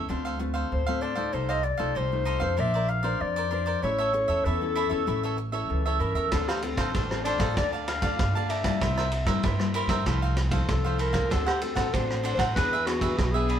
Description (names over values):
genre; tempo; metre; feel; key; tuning
samba and choro; 96 BPM; 4/4; straight; D minor; A4 = 439 Hz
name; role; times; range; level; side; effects
cavaquinho; accompaniment; 0.0-13.6 s; D4 to A5; -31 LUFS; right 3 dB; none
nylon-string guitar; accompaniment; 0.0-13.6 s; G2 to C5; -33 LUFS; left 4 dB; none
upright bass; bass; 0.0-13.6 s; A1 to G2; -30 LUFS; right 1 dB; none
mellow clarinet; second line; 0.7-13.6 s; F#4 to F5; -29 LUFS; left 3 dB; none
vintage drum kit; drums; 6.3-13.6 s; kick drum, ride cymbal, rim click; -29 LUFS; right 1 dB; none
room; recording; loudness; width
moderate studio reverb, RT60 0.7 s; band playing live in one room; -24 LUFS; side -9 dB against mid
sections
0.0-13.6 A section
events
clarinet solo 0.0-13.6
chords
0.1 Dm7; 1.3 F7/C; 2.6 Bbadd9; 3.8 A; 6.3 Dm7; 7.6 Bbmaj7/D; 8.8 C7; 10.1 Fmaj7/C; 11.3 D7; 12.6 E7